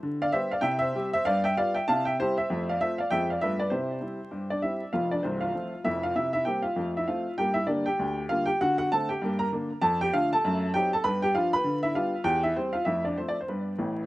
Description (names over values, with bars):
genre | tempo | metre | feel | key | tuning
jazz, stride piano | 196 BPM | 4/4 | swing 60% on 8ths | C major, F major from 4.9 s | A4 = 440 Hz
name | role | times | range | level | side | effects
clear upright piano | solo | 0.0-14.1 s | C1 to B5 | -25 LUFS | equal | slapback echo
room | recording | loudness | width
little or no reverb | recorded outdoors, with no room sound, vinyl crackle | -25 LUFS | side -17 dB against mid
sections
0.0-4.9 A section; 4.9-14.1 B section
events
upright piano fill 13.8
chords
0.0 G/D; 0.7 C; 1.3 G7; 1.9 C; 2.5 F; 3.1 Fm; 3.4 G13; 3.7 C; 4.9 F; 6.2 C7; 6.8 F; 7.4 Gm; 8.6 D7; 9.2 Gm; 9.8 Dm/F; 10.4 F#dim7; 11.0 G7; 11.7 G7/D; 12.3 C/E; 12.9 F; 13.5 G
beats
| 0.04 0.35 0.65 0.96 | 1.26 1.57 1.88 2.18 | 2.49 2.79 3.10 3.40 | 3.71 4.02 4.32 4.63 | 4.93 5.24 5.54 5.85 | 6.16 6.46 6.77 7.07 | 7.38 7.68 7.99 8.29 | 8.60 8.90 9.21 9.51 | 9.82 10.12 10.43 10.73 | 11.04 11.35 11.65 11.96 | 12.26 12.57 12.87 13.18 | 13.48 13.79